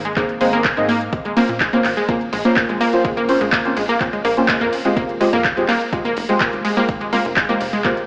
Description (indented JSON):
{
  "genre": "progressive house",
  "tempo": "125 BPM",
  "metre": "4/4",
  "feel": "straight",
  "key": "unclear",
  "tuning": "A4 = 440 Hz",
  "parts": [
    { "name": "tight sequencer bass", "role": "bass", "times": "0.0-7.9 s", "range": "Eb1 to Bb2", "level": "-33 LUFS", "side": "equal", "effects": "sidechain pumping" },
    { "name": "unison pluck", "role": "arpeggios", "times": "0.1-7.9 s", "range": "Ab3 to Bb3", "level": "-22 LUFS", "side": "equal", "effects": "sidechain pumping, tape echo" },
    { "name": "deep house drum kit", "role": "drums", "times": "0.1-8.1 s", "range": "handclaps, hi-hat, ride cymbal", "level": "-25 LUFS", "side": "equal", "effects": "overdrive" },
    { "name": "deep mellow chord stab", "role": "stabs", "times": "0.2-7.9 s", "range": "Ab3 to Eb5", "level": "-22 LUFS", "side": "equal", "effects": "chorus, phaser, sidechain pumping, tape echo" },
    { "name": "electronic kick drum", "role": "drums", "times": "0.2-7.9 s", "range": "none", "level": "-29 LUFS", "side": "equal", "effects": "overdrive" }
  ],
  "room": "moderate lush hall reverb, RT60 2.2 s",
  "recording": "played on a big sound system in a bare room, stone room reverb, AM radio sound",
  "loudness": "-18 LUFS",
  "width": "mono",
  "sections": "0.0-8.1 A section",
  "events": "none",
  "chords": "0.0 Abadd9; 1.1 Bbmadd9; 5.0 Fmadd9"
}